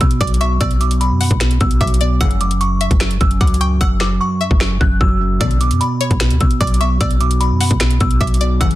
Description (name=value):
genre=hip hop, trap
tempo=150 BPM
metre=4/4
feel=half-time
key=B minor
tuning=A4 = 441 Hz
part: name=delicate synth tine bell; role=melody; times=0.0-8.8 s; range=B5 to F#6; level=-22 LUFS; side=equal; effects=chorus, low-pass filter, digital delay
part: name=string-like resonator pluck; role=second line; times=0.0-8.8 s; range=C#5 to G5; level=-25 LUFS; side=left 5 dB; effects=chorus, digital delay
part: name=clean electric guitar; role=accompaniment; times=0.0-8.8 s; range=F#2 to F#3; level=-20 LUFS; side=right 2 dB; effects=low-pass filter
part: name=clean 808-style bass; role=bass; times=0.0-8.8 s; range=F#1 to B2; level=-17 LUFS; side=equal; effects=none
part: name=trap drum kit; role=drums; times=0.0-8.8 s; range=finger snaps, hi-hat, kick drum, snare drum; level=-17 LUFS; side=equal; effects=soft clipping on snare
part: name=muted symphonic string section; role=stabs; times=2.2-2.4, 5.4-5.6, 8.6-8.8 s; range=A2 to F#3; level=-24 LUFS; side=left 6 dB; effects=none
room=little or no reverb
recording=dense, heavily limited modern master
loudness=-13 LUFS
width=side -15 dB against mid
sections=0.0-8.8 A section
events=hi-hats muted 3.8-5.4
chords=0.0 Bm; 2.2 F#7(no3); 5.4 Bm